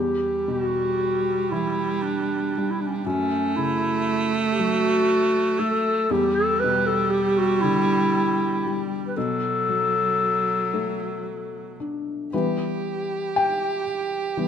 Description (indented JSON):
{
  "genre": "celtic folk, Celtic slow air",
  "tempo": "39 BPM (dotted quarters)",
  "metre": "6/8",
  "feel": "rubato",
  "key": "E dorian",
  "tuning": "A4 = 441 Hz",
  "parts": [
    { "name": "dark clarinet", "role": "melody", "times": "0.0-11.8 s", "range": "C#4 to B4", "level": "-23 LUFS", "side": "left 1 dB", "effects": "none" },
    { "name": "clear viola", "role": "second line", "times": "0.0-14.5 s", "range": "F#3 to G4", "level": "-26 LUFS", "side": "right 4 dB", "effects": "none" },
    { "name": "felt-muted upright piano", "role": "accompaniment", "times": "0.0-14.5 s", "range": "E2 to G5", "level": "-28 LUFS", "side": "left 4 dB", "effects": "none" }
  ],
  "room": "light reverb",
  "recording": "minimal, uncompressed stereo recording",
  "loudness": "-21 LUFS",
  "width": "side -8 dB against mid",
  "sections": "0.0-12.3 A section; 12.3-14.5 B section",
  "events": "felt piano solo 12.3-14.5",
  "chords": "0.0 Emadd9; 3.1 F#m; 6.1 Em7; 9.2 Bm7; 12.3 Em"
}